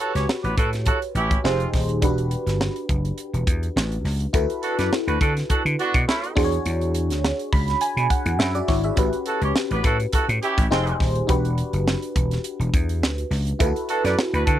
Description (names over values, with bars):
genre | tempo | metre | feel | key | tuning
polished 1980s jazz-funk pop | 104 BPM | 4/4 | swing 54% on 16ths | E dorian | A4 = 440 Hz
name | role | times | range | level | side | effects
clear horn section | second line | 0.0-14.6 s | Ab3 to D5 | -24 LUFS | right 2 dB | none
FM electric piano | accompaniment | 0.0-14.6 s | C#4 to B5 | -26 LUFS | equal | phaser, analog chorus
vintage slap bass | bass | 0.1-14.6 s | Eb1 to D3 | -23 LUFS | equal | none
tight funk drum kit | drums | 0.2-14.6 s | hi-hat, kick drum, snare drum | -23 LUFS | equal | none
room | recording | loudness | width
little or no reverb | dry, close 1970s-style studio recording | -20 LUFS | side -12 dB against mid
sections
0.0-14.6 A section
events
FM electric piano fill 7.2-9.0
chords
0.0 A13; 1.4 Fm9; 2.0 Em9; 4.3 D6; 6.4 E13; 9.0 A13; 10.7 Fm9; 11.3 Em9; 13.6 D6